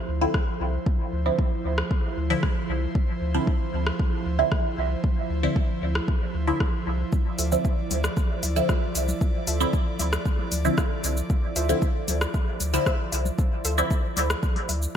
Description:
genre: dub techno.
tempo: 115 BPM.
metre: 4/4.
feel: straight.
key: D minor.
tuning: A4 = 440 Hz.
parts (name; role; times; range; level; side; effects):
airy breathy pad; sustained chords; 0.0-15.0 s; F3 to D5; -32 LUFS; right 2 dB; chorus, sidechain pumping.
pure sine sub bass; bass; 0.1-14.9 s; C2 to D2; -26 LUFS; equal; sidechain pumping.
filtered dub chord stab; stabs; 0.2-13.9 s; D3 to E4; -28 LUFS; right 1 dB; phaser, sidechain pumping, dub echo.
electronic kick drum; drums; 0.3-14.5 s; none; -24 LUFS; equal; overdrive.
soft vintage rhythm box; drums; 0.3-14.9 s; hi-hat, rim click, shaker; -31 LUFS; left 1 dB; gated reverb, dub echo.
warbly dusty pluck; riff; 7.4-13.8 s; F4 to E5; -36 LUFS; right 1 dB; analog chorus, sidechain pumping, dub echo.
woodblock and congas; percussion; 7.6-14.8 s; none; -40 LUFS; left 5 dB; none.
room: light reverb.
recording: bright 1980s-style digital production.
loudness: -22 LUFS.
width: side -8 dB against mid.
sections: 0.0-15.0 A section.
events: none.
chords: 0.0 Dm9.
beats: 0.34 | 0.86 1.39 1.91 2.43 | 2.95 3.47 4.00 4.52 | 5.04 5.56 6.08 6.60 | 7.12 7.65 8.17 8.69 | 9.21 9.73 10.26 10.78 | 11.30 11.82 12.34 12.87 | 13.39 13.91 14.43 14.95.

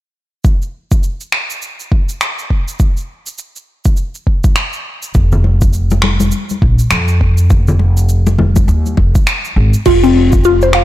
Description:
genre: organic downtempo.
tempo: 102 BPM.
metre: 4/4.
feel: swing 60% on 16ths.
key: F minor.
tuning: A4 = 441 Hz.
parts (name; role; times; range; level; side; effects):
afro-pop drum kit; drums; 0.4-10.8 s; crash cymbal, finger snaps, shaker; -19 LUFS; equal; overdrive, studio reverb, soft clipping on snare.
electronic kick drum; drums; 0.4-10.4 s; none; -12 LUFS; equal; overdrive, studio reverb.
upright bass; bass; 5.1-10.8 s; F1 to F2; -12 LUFS; equal; sidechain pumping.
congas; percussion; 5.3-9.1 s; none; -18 LUFS; left 3 dB; none.
mallet-like synth pluck; arpeggios; 9.9-10.8 s; C4 to F5; -9 LUFS; left 2 dB; chorus, phaser, ping-pong delay.
room: light reverb.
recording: blown-out, overdriven recording, overdrive.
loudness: -11 LUFS.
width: side -14 dB against mid.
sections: 0.4-9.9 A section.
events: none.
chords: 0.4 N.C.; 9.9 F5.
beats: | 0.45 1.03 1.62 2.21 | 2.80 3.39 3.98 4.57 | 5.15 5.74 6.33 6.92 | 7.51 8.09 8.68 9.27 | 9.86 10.45.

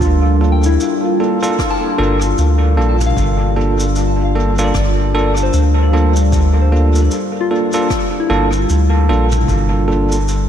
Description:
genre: ambient dub.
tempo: 76 BPM.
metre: 4/4.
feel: swing 58% on 16ths.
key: G dorian.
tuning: A4 = 440 Hz.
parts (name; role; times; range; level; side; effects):
deep dark ambient pad; sustained chords; 0.0-10.5 s; G3 to Bb4; -21 LUFS; left 2 dB; chorus, built-in reverb.
soft synth bell; arpeggios; 0.0-10.5 s; E4 to A5; -23 LUFS; left 4 dB; chorus, tape echo.
round analog bass; bass; 0.0-10.5 s; G1 to D2; -14 LUFS; equal; tube saturation.
electronic kick drum; drums; 0.0-9.7 s; none; -21 LUFS; equal; overdrive.
jazz brush drum kit; drums; 0.0-10.5 s; rim click, shaker, toms; -28 LUFS; equal; dub echo.
bubbling stepped-filter texture; texture; 0.0-10.5 s; F4; -26 LUFS; right 2 dB; chorus, built-in reverb.
bell-like tine electric piano; stabs; 0.4-10.2 s; Bb3 to A4; -19 LUFS; right 2 dB; dub echo.
room: light reverb.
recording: none.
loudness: -12 LUFS.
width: side -9 dB against mid.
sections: 0.0-10.5 A section.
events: none.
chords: 0.0 Gm7.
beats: | 0.01 0.80 1.59 2.38 | 3.17 3.96 4.75 5.54 | 6.33 7.12 7.91 8.70 | 9.49 10.28.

